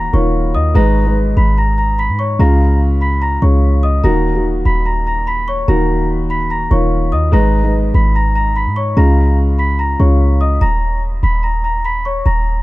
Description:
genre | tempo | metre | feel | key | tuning
hip hop, trap | 146 BPM | 4/4 | half-time | Eb minor | A4 = 440 Hz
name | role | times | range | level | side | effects
large celesta | melody | 0.0-12.6 s | Db5 to Cb7 | -19 LUFS | left 1 dB | none
dark concert grand piano | accompaniment | 0.0-10.6 s | Db3 to Cb5 | -18 LUFS | equal | none
warm 808-style bass | bass | 0.0-12.6 s | Eb1 to Ab2 | -14 LUFS | equal | none
room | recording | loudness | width
studio reverb | dark, warm production | -12 LUFS | side -18 dB against mid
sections
0.0-10.6 A section; 10.6-12.6 B section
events
none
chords
0.0 Ebm; 0.8 Abm; 2.4 Db; 4.0 Ebm; 7.3 Abm; 9.0 Db; 10.6 Eb5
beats
0.34 | 0.75 1.16 1.57 1.98 | 2.40 2.81 3.22 3.63 | 4.04 4.45 4.86 5.27 | 5.68 6.09 6.50 6.92 | 7.33 7.74 8.15 8.56 | 8.97 9.38 9.79 10.20 | 10.61 11.03 11.44 11.85 | 12.26

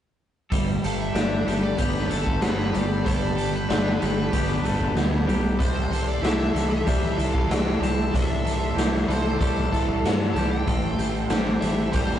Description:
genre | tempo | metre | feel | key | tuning
rock, shoegaze and dream pop | 95 BPM | 4/4 | straight | G major | A4 = 440 Hz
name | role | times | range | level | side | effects
lush unison pad | sustained chords | 0.5-12.2 s | A4 to C6 | -34 LUFS | right 2 dB | chorus
twangy electric guitar | arpeggios | 0.5-12.2 s | G4 to A4 | -37 LUFS | left 2 dB | none
crunchy overdriven guitar | riff | 0.5-12.2 s | A2 to A4 | -30 LUFS | left 6 dB | none
overdriven semi-hollow guitar | riff | 0.5-12.2 s | A2 to A4 | -30 LUFS | right 6 dB | none
growling fingered electric bass | bass | 0.5-12.2 s | G1 to G2 | -28 LUFS | equal | overdrive
raw garage drum kit | drums | 0.5-12.2 s | hi-hat, kick drum, snare drum | -24 LUFS | equal | none
nasal lead guitar with a parked wah | melody | 0.9-12.2 s | A4 to A5 | -34 LUFS | left 2 dB | overdrive, analog delay
room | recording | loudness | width
moderate small room reverb, RT60 0.5 s | rough rehearsal-room recording, tube saturation, nothing above 11.0 kHz | -21 LUFS | side -10 dB against mid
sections
0.5-12.2 A section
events
none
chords
0.5 Gadd9; 5.6 C6; 10.7 Am7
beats
| 0.53 1.16 1.79 2.43 | 3.06 3.70 4.33 4.96 | 5.60 6.23 6.87 7.50 | 8.14 8.77 9.40 10.04 | 10.67 11.31 11.94

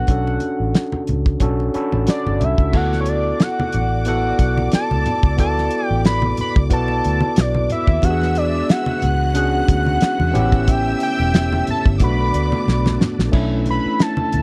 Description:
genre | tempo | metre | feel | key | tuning
lush 1970s-style soul | 90 BPM | 4/4 | swing 54% on 16ths | unclear | A4 = 440 Hz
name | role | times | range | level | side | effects
fat analog lead | melody | 0.0-14.4 s | C#5 to B5 | -25 LUFS | equal | chorus
overdriven tine electric piano | accompaniment | 0.0-14.4 s | A3 to B5 | -25 LUFS | equal | none
vintage muted fingered electric bass | bass | 0.0-14.4 s | E1 to E2 | -23 LUFS | equal | none
cloth-damped thuddy drum kit | drums | 0.1-14.4 s | crash cymbal, hi-hat, kick drum, snare drum | -20 LUFS | equal | none
congas | percussion | 0.1-14.4 s | none | -29 LUFS | equal | none
warm studio string section | second line | 2.7-13.3 s | D5 to F#6 | -33 LUFS | equal | none
bright tonewheel organ | sustained chords | 8.0-14.4 s | C#3 to A4 | -35 LUFS | equal | none
room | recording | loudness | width
little or no reverb | dry, close 1970s-style studio recording | -18 LUFS | mono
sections
0.0-2.7 A section; 2.7-13.3 B section; 13.3-14.4 A section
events
tine electric piano fill 1.4-2.7; drum fill 12.7-13.3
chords
0.1 Bm9; 2.7 D6; 8.0 E13; 10.4 A7; 12.0 Bm7; 13.3 Bm11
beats
| 0.08 0.74 1.40 2.07 | 2.73 3.39 4.06 4.72 | 5.38 6.05 6.71 7.37 | 8.03 8.70 9.36 10.02 | 10.69 11.35 12.01 12.68 | 13.34 14.00

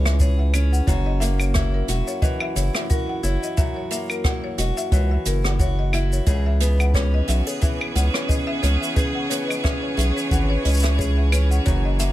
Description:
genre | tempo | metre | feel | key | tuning
folktronica | 89 BPM | 4/4 | swing 56% on 16ths | C# dorian | A4 = 443 Hz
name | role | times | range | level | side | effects
buzzing marimba with medium hard mallets | second line | 0.0-12.1 s | A#4 to F#5 | -31 LUFS | left 6 dB | tape echo, plate reverb
picked steel-string acoustic guitar | arpeggios | 0.0-12.1 s | F#2 to G#4 | -27 LUFS | equal | digital delay, plate reverb
round analog bass | bass | 0.0-12.1 s | E1 to C#2 | -19 LUFS | equal | none
jazz brush drum kit | drums | 0.1-12.1 s | claves, hi-hat, rim click, shaker | -28 LUFS | right 1 dB | none
kick drum | drums | 0.2-11.8 s | none | -22 LUFS | equal | none
clear string quartet | sustained chords | 6.3-12.1 s | E3 to C#5 | -29 LUFS | right 2 dB | none
room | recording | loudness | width
little or no reverb | none | -19 LUFS | side -14 dB against mid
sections
0.0-12.1 A section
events
none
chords
0.0 C#m7; 0.9 F#7; 6.3 C#m7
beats
0.20 | 0.87 1.55 2.22 2.90 | 3.57 4.24 4.92 5.59 | 6.27 6.94 7.62 8.29 | 8.96 9.64 10.31 10.98 | 11.66

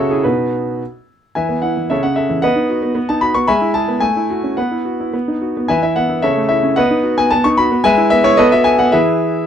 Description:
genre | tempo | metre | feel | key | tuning
classical-period piano sonatina | 106-115 BPM | 2/4 | rubato | E major | A4 = 439 Hz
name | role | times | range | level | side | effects
clear concert grand piano | solo | 0.0-9.5 s | B2 to C#6 | -13 LUFS | equal | none
room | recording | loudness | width
light reverb | dark, warm production | -13 LUFS | side -8 dB against mid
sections
0.0-1.4 A section; 1.4-9.5 B section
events
none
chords
0.2 B; 1.4 E; 1.9 A/C#; 2.4 B; 3.5 E/G#; 4.0 F#m7/A; 4.6 Bsus4; 5.1 B; 5.7 E5; 6.2 A/C#; 6.8 B; 7.8 E/G#; 8.4 B5; 8.9 E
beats
| 0.24 0.80 | 1.36 1.91 | 2.44 2.97 | 3.49 4.03 | 4.58 5.14 | 5.69 6.24 | 6.78 7.32 | 7.85 8.38 | 8.93

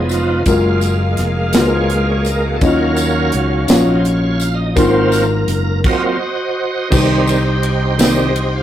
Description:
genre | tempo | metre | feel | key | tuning
slow gospel | 56 BPM (dotted quarters) | 6/8 | straight | unclear | A4 = 440 Hz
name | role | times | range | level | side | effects
dark baby grand piano | accompaniment | 0.0-8.6 s | Ab2 to F5 | -18 LUFS | left 3 dB | none
bright tonewheel organ | sustained chords | 0.0-8.6 s | Eb3 to F5 | -18 LUFS | right 2 dB | chorus vibrato, slow rotary speaker
clear symphonic string section | sustained chords | 0.0-5.8 s | Gb3 to F5 | -27 LUFS | left 2 dB | none
fingered electric bass | bass | 0.0-8.6 s | F1 to Eb2 | -18 LUFS | equal | none
tight funk drum kit | drums | 0.1-8.5 s | crash cymbal, hi-hat, kick drum, ride cymbal, snare drum | -18 LUFS | right 1 dB | none
tambourine | percussion | 0.1-8.3 s | none | -28 LUFS | left 4 dB | none
room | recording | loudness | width
moderate studio reverb, RT60 0.6 s | rough rehearsal-room recording, tube saturation | -12 LUFS | side -11 dB against mid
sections
0.0-6.9 A section; 6.9-8.6 B section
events
tonewheel organ solo 0.0-6.9, 6.9-8.6; stop 5.8-6.9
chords
0.5 Gbmaj9; 2.6 Ebm9; 4.8 Ab13; 6.9 Cm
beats
| 0.47 1.54 | 2.62 3.70 | 4.77 5.85 | 6.92 8.00

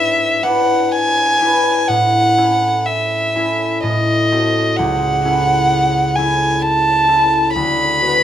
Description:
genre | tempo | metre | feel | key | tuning
classical, romantic duo for violin and harp | 58-68 BPM | 3/4 | rubato | A major | A4 = 440 Hz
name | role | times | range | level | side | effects
dark violin | melody | 0.0-8.2 s | Eb5 to B5 | -14 LUFS | right 1 dB | none
concert harp | accompaniment | 0.0-8.2 s | C#2 to B4 | -18 LUFS | left 1 dB | none
room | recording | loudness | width
light reverb | minimal, uncompressed stereo recording | -13 LUFS | side -10 dB against mid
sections
0.0-8.2 A section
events
none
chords
0.0 E7/G#; 1.9 A; 3.8 Adim7; 4.8 A/C#; 7.5 Bm/D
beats
0.91 | 1.88 2.85 3.83 | 4.77 5.71 6.62 | 7.54

